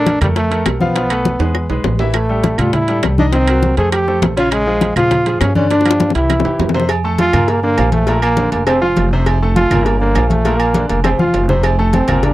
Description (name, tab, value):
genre	latin, salsa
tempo	202 BPM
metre	4/4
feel	straight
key	F major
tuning	A4 = 440 Hz
part	bright trombone	melody	0.0-12.3 s	G3 to Ab4	-16 LUFS	equal	none
part	bright upright piano	accompaniment	0.0-12.3 s	Bb2 to A5	-20 LUFS	left 1 dB	none
part	upright bass	bass	0.0-12.3 s	E1 to Bb2	-17 LUFS	equal	none
part	bongos and cowbell	percussion	0.1-12.3 s	none	-22 LUFS	left 6 dB	none
part	congas	percussion	0.1-12.3 s	none	-20 LUFS	left 1 dB	none
part	timbales and agogo bells	percussion	0.1-12.3 s	none	-23 LUFS	right 7 dB	none
part	claves	percussion	0.2-12.2 s	none	-25 LUFS	right 7 dB	none
room	light reverb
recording	dry, close 1970s-style studio recording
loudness	-12 LUFS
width	side -16 dB against mid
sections	0.0-6.9 A section; 6.9-12.3 B section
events	drum fill 1.4-2.1, 5.7-6.9, 11.0-11.6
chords	0.0 Bbmaj7(no3); 1.0 Fmaj7#11/B; 1.6 E; 2.1 Am7; 3.3 Cm7b5; 3.9 F; 4.5 Bbm7; 5.7 G5; 6.3 C; 6.9 F; 7.5 Gm7; 8.1 Bb; 8.7 F; 9.9 Gm7; 10.5 Bb; 11.0 F